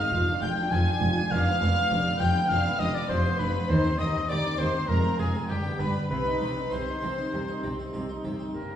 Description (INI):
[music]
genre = classical, baroque-style concerto movement with solo episodes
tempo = 100 BPM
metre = 4/4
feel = straight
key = C minor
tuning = A4 = 444 Hz
[part]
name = warm oboe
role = melody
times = 0.0-8.8 s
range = G4 to Ab5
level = -30 LUFS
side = left 1 dB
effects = none
[part]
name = warm studio violin section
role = melody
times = 0.0-8.8 s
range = G5 to Ab6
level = -37 LUFS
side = left 2 dB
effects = none
[part]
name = warm studio violin section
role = second line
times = 0.0-8.8 s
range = G4 to Ab5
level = -32 LUFS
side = left 1 dB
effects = none
[part]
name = harpsichord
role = accompaniment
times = 0.0-8.8 s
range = Eb2 to D5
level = -35 LUFS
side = right 1 dB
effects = none
[part]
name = warm chamber viola section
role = accompaniment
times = 0.0-8.8 s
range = Ab3 to F4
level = -35 LUFS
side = equal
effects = none
[part]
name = rich chamber double bass section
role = bass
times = 0.1-8.6 s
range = F1 to Eb2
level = -31 LUFS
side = right 1 dB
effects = none
[part]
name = rich symphonic cello section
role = bass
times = 0.1-8.6 s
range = Eb2 to C3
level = -30 LUFS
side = equal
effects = none
[sound]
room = wet recital hall reverb, RT60 1.6 s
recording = heard from further back in the room, studio reverb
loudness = -24 LUFS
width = side -10 dB against mid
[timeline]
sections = 0.0-8.5 A section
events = none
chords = 0.1 Ddim/F; 1.3 G7/F; 3.7 Cm/Eb; 4.9 Fm; 5.5 G; 6.1 Cm